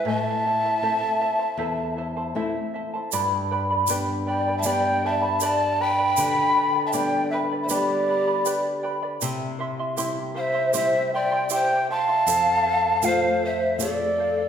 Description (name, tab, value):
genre	andean folk, Andean ensemble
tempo	79 BPM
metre	4/4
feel	straight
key	unclear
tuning	A4 = 440 Hz
part	breathy reedy large quena	melody	0.0-14.5 s	D5 to B5	-23 LUFS	equal	none
part	breathy pan flute	second line	0.0-14.5 s	G4 to G5	-27 LUFS	left 1 dB	none
part	charango	accompaniment	0.0-14.5 s	E4 to C6	-28 LUFS	right 1 dB	none
part	nylon-string guitar	accompaniment	0.1-14.5 s	E2 to F4	-30 LUFS	left 3 dB	none
part	egg shaker	percussion	3.1-14.0 s	none	-31 LUFS	right 8 dB	none
room	wet recital hall reverb, RT60 1.6 s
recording	recorded in a church or concert hall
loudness	-21 LUFS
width	side -8 dB against mid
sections	0.0-3.1 A section; 3.1-14.5 B section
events	none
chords	0.1 Am; 3.1 G; 9.2 C; 12.3 F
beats	| 0.07 0.83 1.59 2.36 | 3.12 3.88 4.64 5.40 | 6.17 6.93 7.69 8.45 | 9.21 9.98 10.74 11.51 | 12.27 13.03 13.80